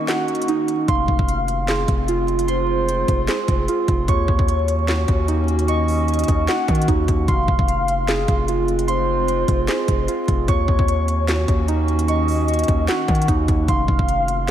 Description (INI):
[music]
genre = hip hop, trap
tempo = 150 BPM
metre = 4/4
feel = half-time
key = F phrygian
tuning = A4 = 440 Hz
[part]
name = warm velvety synth lead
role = second line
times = 0.0-14.5 s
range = C5 to Gb5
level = -26 LUFS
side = left 2 dB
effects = chorus, ping-pong delay
[part]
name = warbly tape-like pad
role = sustained chords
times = 0.0-14.5 s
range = Eb3 to Gb4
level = -28 LUFS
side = left 2 dB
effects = chorus, built-in reverb
[part]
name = muted felt-like synth keys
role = arpeggios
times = 0.0-14.5 s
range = Eb4 to Db6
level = -23 LUFS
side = right 4 dB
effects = chorus, ping-pong delay
[part]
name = trap drum kit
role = drums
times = 0.1-14.5 s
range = handclaps, hi-hat, kick drum, snare drum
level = -22 LUFS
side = equal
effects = none
[part]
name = distorted 808-style bass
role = bass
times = 0.9-14.5 s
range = F1 to Eb3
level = -21 LUFS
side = equal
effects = distortion
[sound]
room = moderate church reverb, RT60 3.2 s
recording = dreamy mix soaked in reverb, vinyl crackle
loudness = -17 LUFS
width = side -10 dB against mid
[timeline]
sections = 0.0-7.3 A section; 7.3-14.5 A section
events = break 0.0-0.9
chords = 0.0 Ebm7; 0.9 Fm; 4.1 Ebm7; 7.3 Fm; 10.5 Ebm7; 13.7 Fm